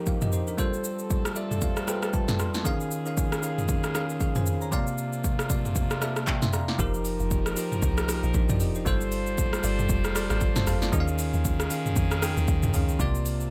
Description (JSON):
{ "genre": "amapiano", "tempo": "116 BPM", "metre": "4/4", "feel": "swing 58% on 16ths", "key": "unclear", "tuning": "A4 = 440 Hz", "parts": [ { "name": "bell-like tine electric piano", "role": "accompaniment", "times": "0.0-13.5 s", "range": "C3 to D6", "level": "-32 LUFS", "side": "equal", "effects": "none" }, { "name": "muted French horn section", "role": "sustained chords", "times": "0.0-13.5 s", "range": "Eb2 to C5", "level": "-39 LUFS", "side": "equal", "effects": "none" }, { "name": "deep house drum kit", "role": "drums", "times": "0.1-13.5 s", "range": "handclaps, hi-hat, kick drum, rim click, shaker, snare drum, toms", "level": "-30 LUFS", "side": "equal", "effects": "overdrive" }, { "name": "deep log drum bass", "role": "bass", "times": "6.8-13.5 s", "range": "F1 to F2", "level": "-31 LUFS", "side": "equal", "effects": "none" } ], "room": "digital ambience", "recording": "none", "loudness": "-27 LUFS", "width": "mono", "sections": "0.0-6.8 A section; 6.8-13.5 B section", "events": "tine electric piano fill 1.1-2.7, 5.8-6.8; drop 6.8-13.5", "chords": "0.0 F9sus4; 0.6 G9sus4; 2.7 Eb9sus4; 4.7 C9sus4; 6.8 F9sus4; 8.9 G9sus4; 10.9 Eb9sus4; 13.0 C9sus4", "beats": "0.07 | 0.58 1.10 1.62 2.14 | 2.65 3.17 3.69 4.21 | 4.72 5.24 5.76 6.28 | 6.79 7.31 7.83 8.34 | 8.86 9.38 9.89 10.41 | 10.93 11.45 11.96 12.48 | 13.00" }